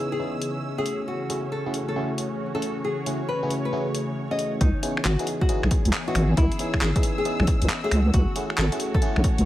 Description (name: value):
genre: UK garage, two-step garage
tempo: 136 BPM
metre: 4/4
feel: swing 65% on 16ths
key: C# minor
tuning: A4 = 439 Hz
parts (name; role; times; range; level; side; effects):
- ethereal airy pad; sustained chords; 0.0-9.5 s; C#3 to C#5; -34 LUFS; equal; ensemble chorus, built-in reverb, sidechain pumping
- FM electric piano; stabs; 0.0-9.5 s; C#3 to G#4; -30 LUFS; equal; chorus, phaser, low-pass filter
- muted studio string section; texture; 0.0-9.5 s; C#4 to E6; -36 LUFS; right 2 dB; sidechain pumping
- nylon-string guitar; melody; 0.1-9.2 s; D#4 to D#5; -30 LUFS; left 2 dB; dub echo
- garage drum kit; drums; 0.4-9.4 s; finger snaps, handclaps, hi-hat; -30 LUFS; equal; small room ambience
- deep soft wobble bass; bass; 4.6-9.4 s; G#1 to C#2; -21 LUFS; equal; chorus
- electronic kick drum; drums; 4.6-9.4 s; none; -23 LUFS; equal; small room ambience
room: digital ambience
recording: vinyl crackle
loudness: -22 LUFS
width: side -14 dB against mid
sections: 0.0-4.6 A section; 4.6-9.5 B section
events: drop 4.6-9.5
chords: 0.0 C#m9; 0.9 F#m9/C#; 4.6 C#m9; 7.9 F#m9